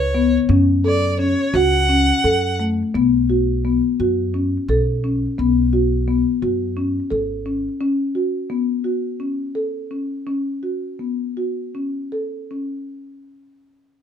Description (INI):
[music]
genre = contemporary instrumental, chamber music in an uneven meter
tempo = 172 BPM (eighths)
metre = 7/8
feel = straight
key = F# minor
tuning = A4 = 439 Hz
[part]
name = warm violin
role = melody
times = 0.0-2.6 s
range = C#5 to F#5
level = -21 LUFS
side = equal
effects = none
[part]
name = upright bass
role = bass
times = 0.0-7.7 s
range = G#1 to F#2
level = -22 LUFS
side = right 1 dB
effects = none
[part]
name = marimba with soft mallets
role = arpeggios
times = 0.1-12.7 s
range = A3 to A4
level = -19 LUFS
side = left 2 dB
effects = none
[sound]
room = light reverb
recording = close, detailed microphones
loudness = -17 LUFS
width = side -8 dB against mid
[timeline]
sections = 0.0-2.9 A section; 2.9-12.9 B section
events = slowing down 7.8-12.9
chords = 0.0 C#5; 0.5 F#m; 2.9 Bsus2; 7.8 F#m